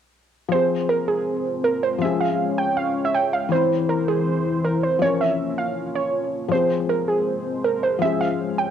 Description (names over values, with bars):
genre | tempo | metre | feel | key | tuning
hip hop | 160 BPM | 4/4 | half-time | F harmonic minor | A4 = 440 Hz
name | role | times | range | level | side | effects
warbly dusty pluck | melody | 0.5-8.7 s | Ab4 to G5 | -22 LUFS | right 4 dB | chorus, cassette tape
felt-muted upright piano | accompaniment | 0.5-8.7 s | E3 to Bb4 | -25 LUFS | left 9 dB | cassette tape
dark analog pad | sustained chords | 1.0-8.7 s | E3 to Db5 | -27 LUFS | left 1 dB | chorus, cassette tape
room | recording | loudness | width
wet studio reverb, RT60 0.5 s | home recording on cassette | -19 LUFS | side -8 dB against mid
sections
0.5-8.7 A section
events
none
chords
0.5 Fm; 2.0 Db; 3.5 C; 5.0 Bbm; 6.5 Fm; 8.0 Db